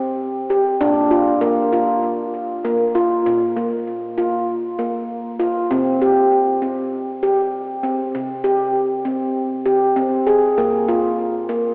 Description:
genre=world meditative, meditative tuned percussion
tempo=98 BPM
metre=4/4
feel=swing 55% on 16ths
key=unclear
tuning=A4 = 441 Hz
part: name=handpan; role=solo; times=0.0-11.7 s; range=Bb2 to Ab4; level=-16 LUFS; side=equal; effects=cassette tape, analog delay
room=wet lush hall reverb, RT60 2.6 s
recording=home recording on cassette, telephone sound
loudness=-16 LUFS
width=side -38 dB against mid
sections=0.0-5.7 A section; 5.7-11.7 B section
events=none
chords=0.0 C5; 0.8 Bb5; 5.7 C5; 10.6 Bb5

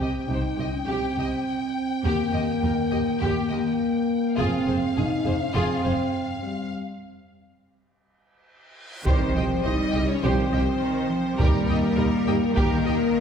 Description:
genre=cinematic, epic orchestral film score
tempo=102 BPM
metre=4/4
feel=straight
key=F minor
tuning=A4 = 442 Hz
part: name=warm symphonic violin section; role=melody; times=0.0-13.0 s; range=Bb4 to G5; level=-34 LUFS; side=left 3 dB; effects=none
part: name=clear studio violin section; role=second line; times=0.0-13.2 s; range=F4 to Eb5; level=-33 LUFS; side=left 3 dB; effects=none
part: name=warm symphonic viola section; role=accompaniment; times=0.0-12.9 s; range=G4 to Eb5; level=-33 LUFS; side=right 2 dB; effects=none
part: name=dark French horn section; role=sustained chords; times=0.0-13.2 s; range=G3 to Eb4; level=-25 LUFS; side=left 1 dB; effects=none
part: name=clear symphonic cello section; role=bass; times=0.0-13.2 s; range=C2 to G3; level=-30 LUFS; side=right 2 dB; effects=none
part: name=warm symphonic double bass section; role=bass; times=0.0-12.9 s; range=F1 to Eb2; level=-30 LUFS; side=right 1 dB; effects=none
part: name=reverse cymbal and impact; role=sound effects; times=8.7-11.4 s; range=none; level=-35 LUFS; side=equal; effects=none
part: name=mellow trombone section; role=sustained chords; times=9.1-12.8 s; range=Eb3 to G3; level=-33 LUFS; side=right 2 dB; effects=none
part: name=clear tuba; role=bass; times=9.1-13.0 s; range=C2 to Eb2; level=-33 LUFS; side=right 2 dB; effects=none
part: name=taiko ensemble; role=drums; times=9.1-13.1 s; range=none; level=-25 LUFS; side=equal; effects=none
room=wet scoring stage reverb, RT60 1.8 s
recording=heard from further back in the room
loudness=-22 LUFS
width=side -7 dB against mid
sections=0.0-9.1 A section; 9.1-13.2 A section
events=break 6.7-9.1; reverse cymbal 8.7-9.1; impact 9.1-11.4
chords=0.0 Cm; 2.0 Eb; 4.4 Fm; 9.1 Cm; 11.4 Eb

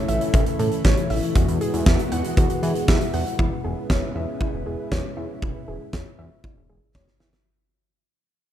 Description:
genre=synth-pop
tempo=118 BPM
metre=4/4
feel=straight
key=E major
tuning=A4 = 440 Hz
part: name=lush unison pad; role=sustained chords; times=0.0-7.4 s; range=C#3 to F#4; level=-28 LUFS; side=equal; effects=chorus
part: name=soft round pluck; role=arpeggios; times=0.0-7.4 s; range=E4 to F#5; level=-30 LUFS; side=right 1 dB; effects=chorus, digital delay
part: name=fat analog bass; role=bass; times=0.1-7.3 s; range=E1 to E3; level=-26 LUFS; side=equal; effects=none
part: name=huge arena drum kit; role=drums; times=0.1-7.4 s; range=hi-hat, kick drum, snare drum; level=-22 LUFS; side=equal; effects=none
room=light reverb, studio reverb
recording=rough home demo mix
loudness=-20 LUFS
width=side -11 dB against mid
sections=0.0-3.4 A section; 3.4-7.5 B section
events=fade-out 3.4-7.5; drum fill 6.9-7.5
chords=0.0 A; 1.4 Eadd9; 3.4 E6

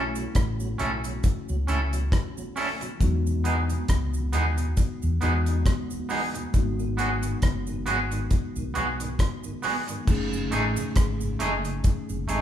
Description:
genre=lovers rock reggae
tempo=68 BPM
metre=4/4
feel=swing 56% on 16ths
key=F# dorian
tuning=A4 = 439 Hz
part: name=mellow tine electric piano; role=accompaniment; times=0.0-12.4 s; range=F#3 to A4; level=-33 LUFS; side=left 1 dB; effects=medium stereo tremolo, tape echo
part: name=tonewheel organ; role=accompaniment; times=0.0-12.4 s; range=E2 to E4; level=-38 LUFS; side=right 2 dB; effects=chorus vibrato
part: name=twangy electric guitar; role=stabs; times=0.0-12.4 s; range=A3 to A4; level=-29 LUFS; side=right 2 dB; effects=none
part: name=hollow-body short-scale fingered electric bass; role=bass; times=0.0-12.4 s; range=F#1 to E2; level=-28 LUFS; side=left 1 dB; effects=none
part: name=deep reggae drum kit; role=drums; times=0.2-12.4 s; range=crash cymbal, hi-hat, kick drum, rim click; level=-26 LUFS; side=equal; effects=none
part: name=cabasa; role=percussion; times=0.2-12.4 s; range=none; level=-44 LUFS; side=right 4 dB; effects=none
room=moderate large studio reverb, RT60 1.3 s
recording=band playing live in one room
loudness=-23 LUFS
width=side -10 dB against mid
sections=0.0-10.1 A section; 10.1-12.4 B section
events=none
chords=0.0 B9sus4; 3.0 Emaj7; 6.5 G#m7; 10.1 F#m69

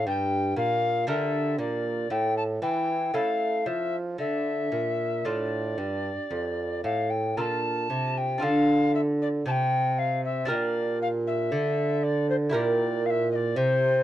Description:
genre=classical, baroque-style sonata movement with continuo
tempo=58 BPM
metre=4/4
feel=straight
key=D minor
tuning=A4 = 439 Hz
part: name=alto recorder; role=melody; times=0.0-14.0 s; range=C5 to Bb5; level=-28 LUFS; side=left 3 dB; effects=none
part: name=lute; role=accompaniment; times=0.0-14.0 s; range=F2 to Bb4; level=-30 LUFS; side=right 1 dB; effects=none
part: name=mellow bassoon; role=bass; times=0.0-14.0 s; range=F2 to A3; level=-28 LUFS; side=right 2 dB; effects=none
room=light reverb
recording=dark, warm production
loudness=-24 LUFS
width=side -12 dB against mid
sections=0.0-8.4 A section; 8.4-14.0 B section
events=none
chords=0.1 Gm; 2.1 A; 4.2 Dm; 10.5 Gm/Bb; 12.5 Em7b5/Bb

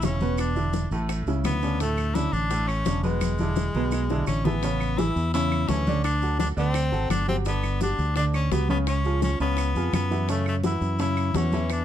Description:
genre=latin, salsa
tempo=170 BPM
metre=4/4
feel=straight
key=A major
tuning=A4 = 439 Hz
part: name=edgy tenor saxophone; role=melody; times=0.0-11.8 s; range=G#3 to E4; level=-29 LUFS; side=left 3 dB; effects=none
part: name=bright upright piano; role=accompaniment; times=0.0-11.8 s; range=A2 to E5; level=-29 LUFS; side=right 3 dB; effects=none
part: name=fingered electric bass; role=bass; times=0.0-11.8 s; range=E1 to F#2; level=-26 LUFS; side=equal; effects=none
part: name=bongos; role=percussion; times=0.0-11.8 s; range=none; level=-34 LUFS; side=left 10 dB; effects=none
part: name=congas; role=percussion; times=0.0-11.8 s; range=none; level=-31 LUFS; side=left 2 dB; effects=none
part: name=maracas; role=percussion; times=0.0-11.8 s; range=none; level=-42 LUFS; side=right 4 dB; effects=none
part: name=claves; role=percussion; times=0.4-11.8 s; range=none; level=-40 LUFS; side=right 5 dB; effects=none
room=light reverb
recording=dark, warm production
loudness=-22 LUFS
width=side -10 dB against mid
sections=0.0-4.6 A section; 4.6-11.8 A section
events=drum fill 3.2-4.6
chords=0.4 E5; 1.1 A; 1.8 Dsus2; 3.2 E7; 4.6 Amaj9; 6.0 D7; 7.5 Gmaj7; 8.9 C#7; 10.3 F#5

